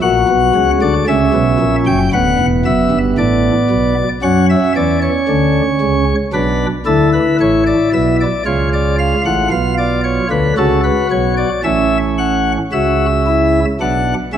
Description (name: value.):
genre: classical, baroque-style 3-part fugue for pipe organ.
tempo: 57 BPM.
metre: 4/4.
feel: straight.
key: unclear.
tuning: A4 = 439 Hz.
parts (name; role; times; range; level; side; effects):
pipe organ, sparkling flutes; solo; 0.0-14.4 s; D1 to G5; -12 LUFS; equal; none.
room: wet recital hall reverb, RT60 1.6 s.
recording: none.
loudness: -12 LUFS.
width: side -9 dB against mid.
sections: 0.0-12.7 A section; 12.7-14.4 B section.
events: none.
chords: 0.0 F#7/A#; 2.1 Bm/D; 4.2 F#5; 6.3 Asus24; 8.5 C#7; 10.6 F#m; 12.7 C#m.